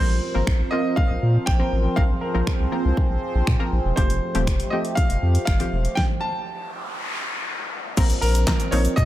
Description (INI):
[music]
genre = dance-pop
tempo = 120 BPM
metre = 4/4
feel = straight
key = unclear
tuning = A4 = 441 Hz
[part]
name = clear concert grand piano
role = melody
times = 0.0-9.0 s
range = Bb4 to A5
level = -28 LUFS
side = right 1 dB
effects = diffuse ambient delay
[part]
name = punchy chord stab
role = accompaniment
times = 0.0-9.0 s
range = F3 to Bb4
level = -29 LUFS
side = equal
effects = chorus, sidechain pumping
[part]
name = sweeping resonant pad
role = sustained chords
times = 0.0-9.1 s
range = F3 to C5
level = -28 LUFS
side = equal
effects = chorus, phaser, sidechain pumping
[part]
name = saturated sub bass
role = bass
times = 0.0-9.1 s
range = Eb1 to Bb2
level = -21 LUFS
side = equal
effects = sidechain pumping
[part]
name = pop drum kit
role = drums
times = 0.5-9.1 s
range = crash cymbal, finger snaps, handclaps, hi-hat, kick drum, shaker, snare drum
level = -22 LUFS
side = equal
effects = none
[part]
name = noise sweep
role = sound effects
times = 6.4-8.0 s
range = none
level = -30 LUFS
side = left 2 dB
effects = none
[sound]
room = light reverb, digital ambience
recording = none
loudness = -19 LUFS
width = side -14 dB against mid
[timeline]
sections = 0.0-8.0 A section; 8.0-9.1 B section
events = stop 6.0-8.0; noise sweep 6.4-8.0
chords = 0.0 Bbsus2; 4.0 Fadd9; 8.0 Bbsus2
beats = 0.47 0.97 1.47 | 1.97 2.47 2.97 3.47 | 3.97 4.47 4.97 5.47 | 5.97 6.47 6.97 7.47 | 7.97 8.47 8.97